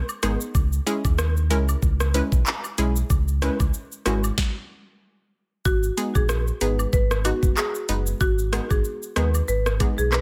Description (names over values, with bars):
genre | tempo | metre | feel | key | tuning
dancehall | 94 BPM | 4/4 | swing 56% on 16ths | G# minor | A4 = 440 Hz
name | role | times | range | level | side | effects
sub bass with octave | bass | 0.0-10.2 s | F#1 to D#2 | -26 LUFS | equal | none
afro-pop drum kit | drums | 0.1-10.2 s | handclaps, hi-hat, kick drum, rim click, shaker, snare drum | -26 LUFS | equal | none
woodblock and cabasa | percussion | 0.1-10.0 s | none | -39 LUFS | equal | none
analog pluck | accompaniment | 0.2-9.9 s | G#3 to B4 | -31 LUFS | equal | chorus
marimba with medium mallets | melody | 5.7-10.2 s | F#4 to B4 | -29 LUFS | equal | delay
room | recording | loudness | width
digital ambience | none | -23 LUFS | mono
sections
0.0-5.7 A section; 5.7-10.2 B section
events
stop 4.4-5.7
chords
0.0 G#m; 0.5 C#m; 5.7 G#m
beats
| 0.55 1.19 1.82 2.46 | 3.10 3.74 4.38 5.02 | 5.65 6.29 6.93 7.57 | 8.21 8.85 9.48 10.12